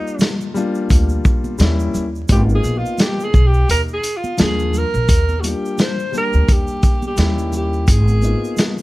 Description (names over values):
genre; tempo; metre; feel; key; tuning
hip hop, jazz-hop; 86 BPM; 4/4; swing 58% on 16ths; Eb major; A4 = 443 Hz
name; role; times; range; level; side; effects
breathy alto saxophone; melody; 0.0-8.8 s; Eb4 to C5; -22 LUFS; right 1 dB; none
dark grand piano; accompaniment; 0.0-8.8 s; F3 to D5; -23 LUFS; left 3 dB; none
tube shaker and congas; percussion; 0.1-8.8 s; none; -32 LUFS; right 4 dB; none
vintage drum kit; drums; 0.2-8.8 s; hi-hat, kick drum, shaker, snare drum; -16 LUFS; equal; none
upright bass; bass; 0.9-8.3 s; Ab1 to Eb2; -17 LUFS; equal; none
room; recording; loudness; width
small room ambience; vinyl crackle; -14 LUFS; side -19 dB against mid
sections
0.0-5.1 A section; 5.1-8.8 B section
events
alto saxophone solo 0.0-5.1; break 3.7-5.1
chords
0.0 Ebmaj9; 1.6 Eb7b9; 2.3 Abm6; 4.4 Ebsus2; 5.1 Ebmaj9; 7.2 Eb7b9; 7.9 Abm6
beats
0.21 0.90 1.60 | 2.30 3.00 3.69 4.39 | 5.09 5.79 6.49 7.18 | 7.88 8.58